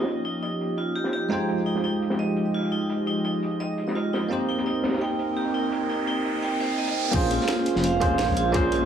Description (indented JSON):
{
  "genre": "liquid drum and bass",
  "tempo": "170 BPM",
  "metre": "4/4",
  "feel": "straight",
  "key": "F minor",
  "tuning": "A4 = 441 Hz",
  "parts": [
    { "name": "bell-like tine electric piano", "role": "accompaniment", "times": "0.0-8.9 s", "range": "Ab3 to G5", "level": "-27 LUFS", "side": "right 1 dB", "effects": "medium stereo tremolo, digital delay" },
    { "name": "warm analog pad", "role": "sustained chords", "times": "0.0-8.9 s", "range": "F3 to Eb5", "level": "-31 LUFS", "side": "equal", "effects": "chorus, vintage 12-bit sampler grit" },
    { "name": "vibraphone with hard mallets", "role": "arpeggios", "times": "0.0-8.9 s", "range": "Eb4 to G5", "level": "-28 LUFS", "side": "right 2 dB", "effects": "low-pass filter, digital delay" },
    { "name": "crunchy breakbeat drum kit", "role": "drums", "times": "0.0-8.8 s", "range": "hi-hat, snare drum", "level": "-34 LUFS", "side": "equal", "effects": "high-pass filter on hats, low-pass filter on hats, small room ambience, high-pass filter on snare, low-pass filter on snare, high-pass filter on room, low-pass filter on room" },
    { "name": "riser", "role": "sound effects", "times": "5.3-7.1 s", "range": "none", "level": "-33 LUFS", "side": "right 3 dB", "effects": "none" },
    { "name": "swelling detuned saw bass", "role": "bass", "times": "7.1-8.9 s", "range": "F1 to Bb1", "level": "-26 LUFS", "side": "equal", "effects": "tube saturation" },
    { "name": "electronic kick drum", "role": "drums", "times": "7.1-8.6 s", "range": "none", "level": "-26 LUFS", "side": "equal", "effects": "overdrive, small room ambience" },
    { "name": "garage drum kit", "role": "drums", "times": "7.1-8.8 s", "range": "crash cymbal, hi-hat, snare drum", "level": "-32 LUFS", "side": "equal", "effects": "overdrive, small room ambience" }
  ],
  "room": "moderate plate reverb, RT60 1.1 s",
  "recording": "small room ambience",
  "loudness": "-23 LUFS",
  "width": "side -8 dB against mid",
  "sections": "0.0-7.1 A section; 7.1-8.9 B section",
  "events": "riser 5.3-7.1; drop 7.1-8.9",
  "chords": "0.0 Eb9; 1.3 Fm9; 4.3 Cm7; 7.1 Bbm9",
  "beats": "| 0.07 0.43 0.78 1.13 | 1.49 1.84 2.19 2.54 | 2.90 3.25 3.60 3.96 | 4.31 4.66 5.01 5.37 | 5.72 6.07 6.43 6.78 | 7.13 7.49 7.84 8.19 | 8.54"
}